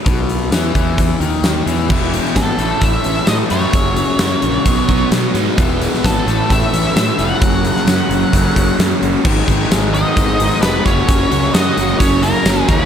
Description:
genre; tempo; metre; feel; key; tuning
classic rock; 131 BPM; 4/4; straight; unclear; A4 = 440 Hz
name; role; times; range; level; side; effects
cranked stack guitar; riff; 0.1-12.9 s; E2 to B3; -20 LUFS; left 8 dB; overdrive, slapback echo
fuzz fingered electric bass; bass; 0.1-12.8 s; E1 to B2; -20 LUFS; right 1 dB; overdrive
huge arena drum kit; drums; 0.1-12.8 s; crash cymbal, hi-hat, kick drum, snare drum, tambourine; -16 LUFS; equal; none
crunchy overdriven guitar; riff; 1.9-12.9 s; F#2 to F#4; -21 LUFS; right 9 dB; phaser, slapback echo
octave-fuzz lead guitar; melody; 2.4-12.9 s; A4 to F#5; -20 LUFS; equal; distortion
tonewheel organ; sustained chords; 5.3-12.9 s; G#3 to D5; -30 LUFS; equal; none
octave-fuzz lead guitar; second line; 9.9-12.9 s; A#3 to F#4; -24 LUFS; right 4 dB; distortion, slapback echo
room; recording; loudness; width
moderate lush hall reverb, RT60 1.6 s; big arena sound; -12 LUFS; side -8 dB against mid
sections
0.0-1.9 A section; 1.9-9.2 B section; 9.2-12.9 C section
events
none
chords
0.0 B; 1.9 E; 2.6 A; 3.7 F#; 4.7 B; 5.6 E; 6.3 A; 7.4 F#; 9.2 G#m; 10.8 F#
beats
| 0.06 0.52 0.98 1.44 | 1.90 2.36 2.82 3.28 | 3.74 4.20 4.66 5.12 | 5.58 6.04 6.49 6.95 | 7.41 7.87 8.33 8.79 | 9.25 9.71 10.16 10.62 | 11.08 11.54 12.00 12.45

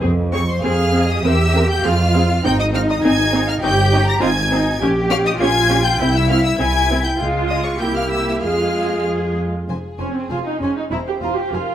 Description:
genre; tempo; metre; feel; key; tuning
quick classical-period movement for string orchestra; 100 BPM; 2/4; rubato; F minor; A4 = 440 Hz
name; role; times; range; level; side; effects
rich chamber viola section; accompaniment; 0.0-11.7 s; Ab3 to Bb4; -21 LUFS; right 1 dB; none
warm symphonic double bass section; bass; 0.0-11.6 s; E1 to F2; -20 LUFS; right 1 dB; none
rich symphonic violin section; melody; 0.3-11.7 s; Ab4 to Bb6; -23 LUFS; left 2 dB; none
rich chamber violin section; second line; 0.3-11.6 s; C5 to Bb5; -24 LUFS; left 2 dB; none
rich studio cello section; bass; 0.6-11.6 s; E2 to Ab4; -22 LUFS; equal; none
room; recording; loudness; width
moderate recital hall reverb, RT60 1.7 s; none; -15 LUFS; side -11 dB against mid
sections
0.0-9.7 A section; 9.7-11.7 B section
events
none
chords
0.0 Fm; 1.2 C7/E; 1.8 Fm; 2.4 Ab; 3.6 Eb7/G; 4.2 Ab; 4.8 Gdim/Bb; 6.0 C; 7.2 Db; 7.8 C7; 8.4 Fm; 10.9 C7/E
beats
| 0.02 0.63 | 1.24 1.84 | 2.44 3.04 | 3.62 4.21 | 4.80 5.40 | 5.99 6.59 | 7.18 7.80 | 8.43 9.07 | 9.69 10.31 | 10.92 11.52

